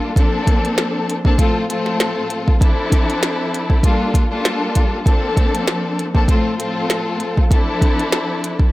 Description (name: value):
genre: hip hop, boom-bap hip-hop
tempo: 98 BPM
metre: 4/4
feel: swing 54% on 16ths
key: D minor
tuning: A4 = 440 Hz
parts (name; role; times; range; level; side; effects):
- dark studio string section; accompaniment; 0.0-8.7 s; A2 to A4; -19 LUFS; left 2 dB; high-pass filter, low-pass filter
- glitchy drum kit; drums; 0.2-8.7 s; hi-hat, kick drum, snare drum; -16 LUFS; equal; none
room: little or no reverb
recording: none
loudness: -15 LUFS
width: side -18 dB against mid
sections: 0.0-8.7 A section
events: none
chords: 0.2 Bbmaj7; 1.4 F/A; 2.6 Dm7; 3.8 Gm7; 5.1 Bbmaj7; 6.3 F/A; 7.5 Dm7